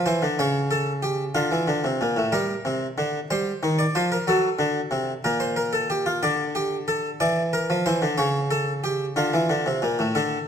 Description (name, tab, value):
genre	classical, baroque-style two-part invention for harpsichord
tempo	61 BPM (dotted quarters)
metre	6/8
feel	straight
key	unclear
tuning	A4 = 443 Hz
part	harpsichord	solo	0.0-10.5 s	A2 to D5	-21 LUFS	equal	none
room	moderate recital hall reverb, RT60 1.6 s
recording	close, detailed microphones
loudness	-21 LUFS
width	side -8 dB against mid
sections	0.0-10.2 A section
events	none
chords	0.4 A/C#; 1.4 Dm; 2.3 Gm; 3.3 Ebmaj13; 4.3 D; 5.2 Gm/Bb; 6.2 D5; 7.2 Dm9; 8.2 A/C#; 9.2 Dm